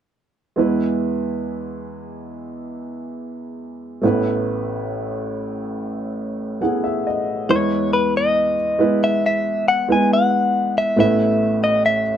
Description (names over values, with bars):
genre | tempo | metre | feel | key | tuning
acoustic folk-pop ballad | 69 BPM | 4/4 | straight | E major | A4 = 437 Hz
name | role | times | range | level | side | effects
warm upright piano | accompaniment | 0.6-12.2 s | A1 to F#5 | -20 LUFS | right 1 dB | none
direct-recorded clean electric guitar | melody | 7.5-12.2 s | B4 to G#5 | -18 LUFS | left 1 dB | tremolo
room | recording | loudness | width
moderate small room reverb, RT60 0.5 s | none | -17 LUFS | side -9 dB against mid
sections
0.6-7.5 A section; 7.5-12.2 B section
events
none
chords
0.6 E; 4.0 Asus2; 7.5 E; 11.0 Asus2